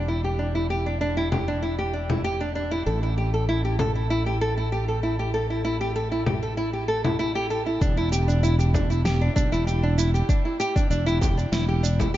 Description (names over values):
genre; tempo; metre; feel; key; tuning
organic downtempo; 97 BPM; 4/4; straight; E minor; A4 = 442 Hz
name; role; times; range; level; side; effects
nylon-string guitar; arpeggios; 0.0-12.2 s; D4 to A4; -25 LUFS; equal; tape echo, shimmer reverb
sustaining fretless electric bass; bass; 0.0-12.1 s; E1 to B1; -25 LUFS; equal; analog chorus, sidechain pumping
electronic congas, shaker and snare drum; drums; 1.3-12.1 s; none; -29 LUFS; left 2 dB; none
electronic kick drum; drums; 7.8-12.1 s; none; -23 LUFS; equal; none
room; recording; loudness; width
moderate lush hall reverb, RT60 1.7 s; dark, warm production, nothing above 7.5 kHz; -22 LUFS; side -14 dB against mid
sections
0.0-7.8 A section; 7.8-12.2 B section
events
none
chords
0.0 Em7; 2.9 A5; 7.8 Em7